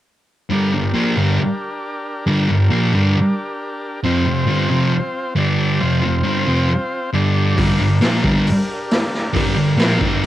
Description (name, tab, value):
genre	garage rock duo or trio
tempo	136 BPM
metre	4/4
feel	straight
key	G minor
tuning	A4 = 440 Hz
part	combo organ	sustained chords	0.5-10.3 s	C4 to D5	-25 LUFS	left 1 dB	cassette tape
part	thick fuzz guitar	riff	0.5-10.2 s	F2 to Bb3	-15 LUFS	equal	distortion, cassette tape
part	raw garage drum kit	drums	7.6-10.3 s	hi-hat, kick drum, snare drum	-20 LUFS	equal	cassette tape
room	light reverb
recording	home recording on cassette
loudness	-15 LUFS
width	side -13 dB against mid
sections	0.5-10.3 A section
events	none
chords	0.5 Gm; 4.0 F5; 5.4 G5; 5.8 F5; 7.1 G5; 7.6 Gm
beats	| 0.50 0.94 1.39 1.83 | 2.27 2.71 3.15 3.59 | 4.04 4.48 4.92 5.36 | 5.81 6.25 6.69 7.13 | 7.58 8.02 8.46 8.90 | 9.35 9.79 10.23